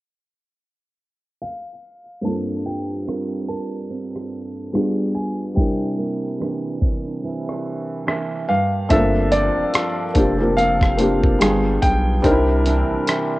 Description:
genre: contemporary R&B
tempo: 72 BPM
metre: 4/4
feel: swing 58% on 16ths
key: G dorian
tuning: A4 = 440 Hz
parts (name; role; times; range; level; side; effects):
- warm baby grand piano; melody; 1.4-13.4 s; D5 to A5; -24 LUFS; left 1 dB; cassette tape, tape echo
- felt-muted upright piano; accompaniment; 2.2-13.4 s; G2 to Bb4; -22 LUFS; left 1 dB; cassette tape
- nylon-string guitar; arpeggios; 2.2-13.4 s; G2 to Bb4; -26 LUFS; right 3 dB; cassette tape, tape echo
- dusty soul sampler-style drum kit; drums; 3.1-13.3 s; hi-hat, kick drum, rim click; -21 LUFS; equal; none
- saturated sub bass; bass; 8.9-13.0 s; F1 to C2; -22 LUFS; equal; none
room: moderate spring reverb, RT60 2.4 s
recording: home recording on cassette, low-pass filter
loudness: -18 LUFS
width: side -18 dB against mid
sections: 0.0-2.2 A section; 2.2-8.9 B section; 8.9-13.4 C section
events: filter sweep 2.2-8.9; kick muted 7.2-8.9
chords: 0.0 N.C.; 2.2 Gm11; 4.7 G7b9; 5.6 C9; 8.5 N.C.; 8.9 Gm11; 11.4 G7b9; 12.2 C9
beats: 0.57 1.41 | 2.24 3.07 3.91 4.74 | 5.57 6.41 7.24 8.07 | 8.91 9.74 10.57 11.41 | 12.24 13.07

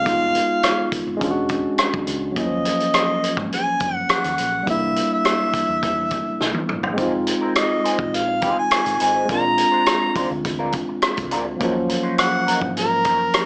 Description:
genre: lush 1970s-style soul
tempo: 104 BPM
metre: 4/4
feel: straight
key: unclear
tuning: A4 = 440 Hz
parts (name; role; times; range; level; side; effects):
- mellow harmonica; melody; 0.0-13.5 s; Bb4 to Bb5; -23 LUFS; equal; none
- barky tine electric piano; accompaniment; 0.0-13.5 s; F3 to F#4; -26 LUFS; equal; none
- hollow-body short-scale fingered electric bass; bass; 0.0-13.3 s; E1 to Ab2; -38 LUFS; equal; none
- vintage drum kit; drums; 0.1-13.5 s; hi-hat, kick drum, rim click, snare drum, toms; -26 LUFS; equal; none
- electric guitar through a small old amp; riff; 7.0-13.4 s; Gb3 to C5; -29 LUFS; equal; wah
room: light reverb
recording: small speaker sound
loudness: -20 LUFS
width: mono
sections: 0.0-13.5 A section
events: drum fill 6.4-7.0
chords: 0.1 Fm7b5; 1.2 E13; 2.4 Ebm7; 4.7 C7; 7.0 Fm7; 9.3 Bb7; 11.6 Ebm7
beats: | 0.06 0.64 1.21 1.79 | 2.37 2.94 3.52 4.10 | 4.67 5.25 5.83 6.41 | 6.98 7.56 8.14 8.71 | 9.29 9.87 10.45 11.03 | 11.61 12.19 12.77 13.34

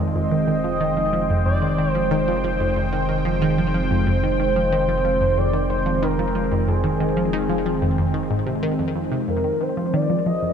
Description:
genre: ambient, sequencer-driven space music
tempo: 92 BPM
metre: 4/4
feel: straight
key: F dorian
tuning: A4 = 441 Hz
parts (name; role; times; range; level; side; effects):
- phased analog pad; sustained chords; 0.0-10.5 s; Eb3 to G5; -24 LUFS; right 1 dB; phaser, chorus
- analog pluck; riff; 0.0-10.5 s; F2 to F3; -23 LUFS; equal; chorus, phaser, ping-pong delay
- round analog bass; bass; 0.0-10.5 s; F1; -29 LUFS; equal; none
- expressive synth lead; melody; 0.2-10.5 s; Ab4 to Eb5; -25 LUFS; equal; lush chorus, ping-pong delay
room: wet huge ambient reverb, RT60 7.4 s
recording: cassette tape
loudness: -19 LUFS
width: side -7 dB against mid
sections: 0.0-9.3 A section; 9.3-10.5 B section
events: none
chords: 0.0 Fm7; 9.3 Fm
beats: 0.15 0.81 | 1.46 2.11 2.76 3.41 | 4.07 4.72 5.37 6.02 | 6.67 7.33 7.98 8.63 | 9.28 9.94

